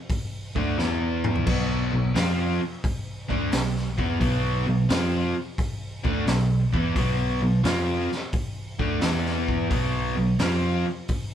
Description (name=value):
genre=blues rock power trio and southern rock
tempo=87 BPM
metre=4/4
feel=swing 68% on 8ths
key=unclear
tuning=A4 = 443 Hz
part: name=raw garage drum kit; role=drums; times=0.1-11.3 s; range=crash cymbal, hi-hat, kick drum, snare drum, toms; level=-28 LUFS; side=equal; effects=none
part: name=overdriven electric guitar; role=riff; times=0.6-10.9 s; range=B2 to E#4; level=-24 LUFS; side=equal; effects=none
part: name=vintage muted picked electric bass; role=bass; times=0.6-10.8 s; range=B1 to E#2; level=-28 LUFS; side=equal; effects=none
room=moderate studio reverb, RT60 0.7 s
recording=band playing live in one room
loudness=-22 LUFS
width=side -10 dB against mid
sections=0.0-11.3 A section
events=drum fill 0.8-1.5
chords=0.0 N.C.; 0.8 E5; 1.5 B5; 9.0 E5; 9.7 B5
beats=0.09 0.78 | 1.46 2.15 2.84 3.52 | 4.21 4.90 5.58 6.27 | 6.96 7.64 8.33 9.02 | 9.71 10.40 11.09